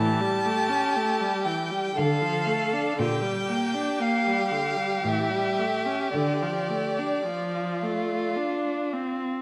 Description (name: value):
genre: classical, slow romantic movement for string quartet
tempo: 53-61 BPM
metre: 3/4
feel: rubato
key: D minor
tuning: A4 = 439 Hz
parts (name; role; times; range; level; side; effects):
- rich violin; melody; 0.0-8.3 s; D5 to A5; -32 LUFS; equal; none
- rich violin; second line; 0.0-9.3 s; F4 to A4; -32 LUFS; equal; none
- rich viola; accompaniment; 0.0-9.4 s; D3 to D4; -31 LUFS; equal; none
- rich cello; bass; 0.0-7.1 s; A2 to D3; -33 LUFS; equal; none
room: wet recital hall reverb, RT60 1.4 s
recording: none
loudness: -26 LUFS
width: mono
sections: 0.0-9.4 A section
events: none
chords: 0.0 A7; 2.0 Dm; 3.0 Gm/Bb; 5.1 A7; 6.1 Dm